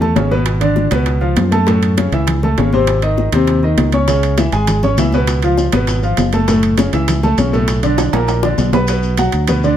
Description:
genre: latin, salsa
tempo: 200 BPM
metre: 4/4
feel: straight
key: unclear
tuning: A4 = 443 Hz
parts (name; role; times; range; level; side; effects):
- clear grand piano; accompaniment; 0.0-9.8 s; A2 to C#6; -16 LUFS; equal; none
- fingered electric bass; bass; 0.0-9.7 s; F#1 to F#2; -16 LUFS; equal; none
- bongos; percussion; 0.0-8.8 s; none; -24 LUFS; left 6 dB; none
- congas; percussion; 0.0-9.8 s; none; -21 LUFS; left 3 dB; none
- timbales; percussion; 0.2-9.6 s; none; -24 LUFS; right 9 dB; none
- maracas; percussion; 4.1-9.8 s; none; -31 LUFS; left 3 dB; none
room: light reverb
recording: none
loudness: -12 LUFS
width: side -10 dB against mid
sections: 0.0-8.9 A section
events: drum fill 8.0-8.9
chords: 0.5 G#dim; 1.1 C#7; 1.7 F#m7; 2.9 G#; 4.1 C#m7; 5.3 C#7; 6.5 F#m7; 7.7 Bm7; 8.3 Bb; 8.9 Bm

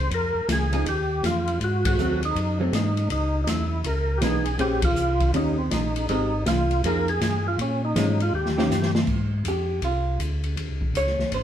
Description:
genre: soul jazz organ trio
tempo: 161 BPM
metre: 4/4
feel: swing 64% on 8ths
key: Ab major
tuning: A4 = 436 Hz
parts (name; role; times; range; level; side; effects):
- percussive tonewheel organ; melody; 0.0-8.9 s; C4 to C5; -26 LUFS; right 1 dB; slow rotary speaker, overdrive, chorus vibrato
- mellow tonewheel organ; bass; 0.0-11.4 s; Ab1 to Bb2; -26 LUFS; equal; slow rotary speaker
- open jazz drum kit; drums; 0.1-11.4 s; crash cymbal, hi-hat, kick drum, ride cymbal, snare drum; -27 LUFS; left 1 dB; none
- hollow-body jazz guitar; accompaniment; 0.7-11.4 s; Eb3 to Db5; -27 LUFS; right 1 dB; none
room: moderate stone room reverb, RT60 1.0 s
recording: band playing live in one room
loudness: -21 LUFS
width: side -10 dB against mid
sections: 0.0-9.1 A section; 9.1-11.4 B section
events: band accent 1.8, 4.8; drum fill 8.3-9.1; hollow-body jazz guitar solo 9.1-11.4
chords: 0.1 Fm11; 1.6 Ab7b9; 3.1 Dbm9; 4.6 Bbm9; 5.3 Eb7; 6.1 Abmaj9; 6.8 Fm11; 7.6 Bbm7; 8.3 Eb7; 9.1 Ab6; 10.6 Eb5

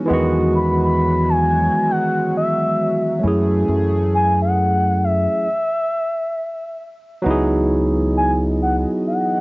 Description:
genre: R&B, neo-soul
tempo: 67 BPM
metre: 4/4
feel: swing 63% on 16ths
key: C# minor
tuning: A4 = 440 Hz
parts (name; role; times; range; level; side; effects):
- barky tine electric piano; accompaniment; 0.0-9.4 s; D#3 to G#4; -19 LUFS; right 1 dB; overdrive
- chorused pulse-width pad; sustained chords; 0.0-9.4 s; E3 to D#5; -29 LUFS; left 1 dB; none
- deep dub fingered electric bass; bass; 0.1-8.8 s; C#2 to F#2; -20 LUFS; equal; none
- expressive synth lead; melody; 0.6-9.4 s; E5 to B5; -20 LUFS; left 1 dB; chorus, cassette tape
room: light reverb, digital ambience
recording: home recording on cassette, nothing above 7.7 kHz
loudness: -16 LUFS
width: side -24 dB against mid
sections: 0.0-7.3 A section; 7.3-9.4 A section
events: stop 5.5-7.3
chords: 0.1 Emaj9; 3.2 F#m9; 6.4 N.C.; 7.3 C#m11

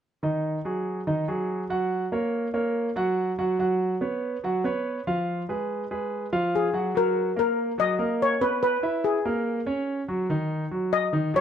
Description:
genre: jazz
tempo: 143 BPM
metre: 4/4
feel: straight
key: F# major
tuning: A4 = 439 Hz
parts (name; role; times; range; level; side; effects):
- warm concert grand piano; accompaniment; 0.2-11.4 s; D#3 to F#5; -25 LUFS; right 2 dB; none
- steel pan; melody; 6.6-11.4 s; Ab4 to D#5; -24 LUFS; left 4 dB; none
room: light reverb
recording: close, detailed microphones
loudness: -24 LUFS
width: side -8 dB against mid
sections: 0.2-6.9 A section; 6.9-11.4 B section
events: none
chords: 0.2 G#5; 1.9 F#; 3.6 Bsus2; 5.3 Fdim; 6.9 F#; 8.6 E; 9.5 F#; 10.3 B (rootless)

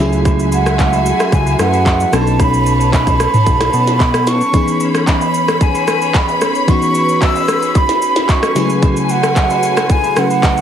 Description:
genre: amapiano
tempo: 112 BPM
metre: 4/4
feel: straight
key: C# minor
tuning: A4 = 440 Hz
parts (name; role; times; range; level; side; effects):
- FM electric piano with soft pad layer; accompaniment; 0.0-10.6 s; C#3 to E5; -18 LUFS; left 1 dB; chorus
- warm studio string section; sustained chords; 0.0-10.6 s; A3 to B5; -22 LUFS; left 2 dB; sidechain pumping
- fat analog bass; bass; 0.0-4.4 s; B1 to B2; -16 LUFS; equal; none
- minimal click drum kit; drums; 0.1-10.6 s; handclaps, kick drum, rim click, shaker, snare drum, toms; -16 LUFS; equal; overdrive, vintage 12-bit sampler grit
- agogo bells and woodblock; percussion; 0.3-10.6 s; none; -26 LUFS; right 5 dB; none
- breathy mellow jazz flute; melody; 0.5-10.6 s; F#5 to E6; -17 LUFS; right 2 dB; none
room: light reverb, digital ambience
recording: heavily compressed radio sound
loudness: -11 LUFS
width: side -9 dB against mid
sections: 0.0-10.6 A section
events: FM electric piano fill 0.0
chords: 0.0 F#m9/C#; 2.1 B9; 4.5 C#m9; 8.6 F#m9/C#

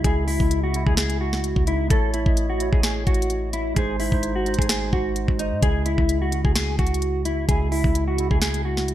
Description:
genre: hip hop, trap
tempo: 129 BPM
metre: 4/4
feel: half-time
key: C# harmonic minor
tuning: A4 = 440 Hz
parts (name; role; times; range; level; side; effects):
- mellow electric guitar; melody; 0.0-8.9 s; D#4 to A4; -26 LUFS; left 1 dB; analog chorus
- mellow tine electric piano; accompaniment; 0.0-8.9 s; C#3 to D#5; -28 LUFS; right 2 dB; wide subtle chorus
- clean 808-style bass; bass; 0.0-8.9 s; G#1 to G#2; -25 LUFS; equal; none
- trap drum kit; drums; 0.0-8.9 s; hi-hat, kick drum, snare drum; -22 LUFS; equal; none
room: light reverb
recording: bright 1980s-style digital production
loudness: -20 LUFS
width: side -12 dB against mid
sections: 0.0-8.9 A section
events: none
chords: 0.0 C#m; 1.9 A; 3.8 G#; 5.6 C#m

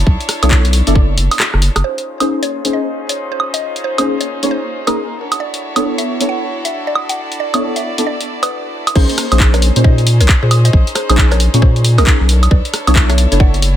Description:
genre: UK garage, two-step garage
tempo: 135 BPM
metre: 4/4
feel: swing 62% on 16ths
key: unclear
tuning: A4 = 444 Hz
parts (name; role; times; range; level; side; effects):
- clear chamber violin section; sustained chords; 0.0-13.8 s; Db4 to D5; -26 LUFS; equal; sidechain pumping, low-pass filter
- saturated sub bass; bass; 0.0-1.8, 9.0-13.8 s; F#1 to Bb2; -12 LUFS; equal; sidechain pumping
- electronic kick drum; drums; 0.1-1.1, 9.0-13.5 s; none; -11 LUFS; equal; none
- punchy analog drum machine; drums; 0.2-13.7 s; crash cymbal, handclaps, hi-hat, rim click, woodblock; -17 LUFS; right 1 dB; none
- deep mellow chord stab; stabs; 0.4-13.5 s; Bb3 to D5; -19 LUFS; left 1 dB; ensemble chorus, ping-pong delay
- mallet-like synth pluck; melody; 1.8-13.6 s; Db4 to F#5; -23 LUFS; equal; chorus, phaser, ping-pong delay
room: light reverb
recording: dense, heavily limited modern master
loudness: -12 LUFS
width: side -11 dB against mid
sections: 0.0-1.8 A section; 1.8-9.0 B section; 9.0-13.8 C section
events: kick drops out 1.4-1.8; drum fill 1.4-1.8; filter sweep on violin section 1.8-9.0; drop 9.0-13.8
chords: 0.0 Bm11; 1.8 Bbm11; 5.2 Bm11; 9.0 Bbm11; 12.3 Bm11

